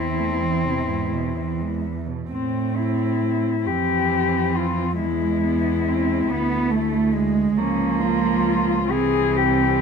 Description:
classical, lyrical piece for cello ensemble; 41-48 BPM (dotted quarters); 6/8; rubato; A4 = 441 Hz
muted cello; melody; 0.0-9.8 s; C4 to Ab4; -24 LUFS; left 10 dB
muted cello; second line; 0.0-9.8 s; G#2 to C4; -24 LUFS; right 10 dB
muted cello; accompaniment; 0.0-9.8 s; E3 to C4; -27 LUFS; left 2 dB
muted cello; bass; 0.0-9.8 s; C2 to A2; -26 LUFS; right 2 dB
light reverb; close, detailed microphones; -19 LUFS; side -6 dB against mid
0.0-9.8 A section
0.0 Am/E; 2.3 Am; 5.0 E; 7.6 Db; 8.9 C
0.89 | 2.31 3.67 | 4.99 6.31 | 7.57 8.90

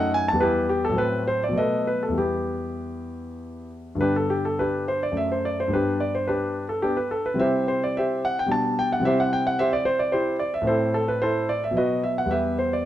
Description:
classical, baroque-style suite movement for grand piano; 97-112 BPM; 3/4; rubato; E minor, G major from 4.0 s; A4 = 440 Hz
warm concert grand piano; solo; 0.0-12.9 s; E2 to A5; -22 LUFS; equal
light reverb; close, detailed microphones; -21 LUFS; side -12 dB against mid
0.0-4.0 A section; 4.0-12.9 A section
0.4 Em; 1.0 F#dim/A; 1.6 B7; 2.2 Em; 4.0 G; 5.2 F#m7b5; 5.7 G; 7.4 C; 8.5 G/B; 9.0 C; 10.7 Am; 11.8 B; 12.3 Em
| 0.42 0.98 1.56 | 2.17 2.79 3.40 | 4.00 4.58 5.16 | 5.73 6.28 6.83 | 7.40 7.96 8.50 | 9.04 9.57 10.12 | 10.67 11.21 11.76 | 12.30

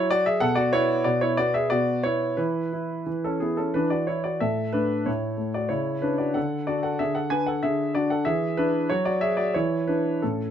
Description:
classical-period piano sonatina; 86-96 BPM; 3/4; rubato; A4 = 440 Hz
warm grand piano; solo; 0.0-10.5 s; A2 to G#5; -22 LUFS; equal
light reverb; -22 LUFS; side -9 dB against mid
0.0-10.5 A section
0.4 B5; 2.4 E5; 4.4 A5; 5.7 Dmaj13/C#; 6.4 Bm7/D (rootless); 8.3 E; 8.9 E13/F#; 9.5 E5
| 0.42 1.05 1.71 | 2.38 3.07 3.75 | 4.42 5.07 5.72 | 6.37 7.01 7.64 | 8.26 8.89 9.54 | 10.22

